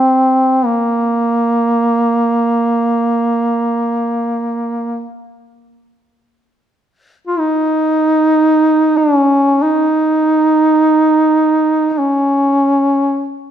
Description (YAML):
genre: caucasian folk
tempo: free time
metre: none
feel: none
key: Bb minor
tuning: A4 = 441 Hz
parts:
  - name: mellow duduk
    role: solo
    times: 0.0-13.3 s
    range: Bb3 to F4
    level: -12 LUFS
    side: right 1 dB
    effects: none
room: light reverb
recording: minimal, uncompressed stereo recording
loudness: -12 LUFS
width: side -10 dB against mid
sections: 0.0-13.5 A section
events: none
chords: none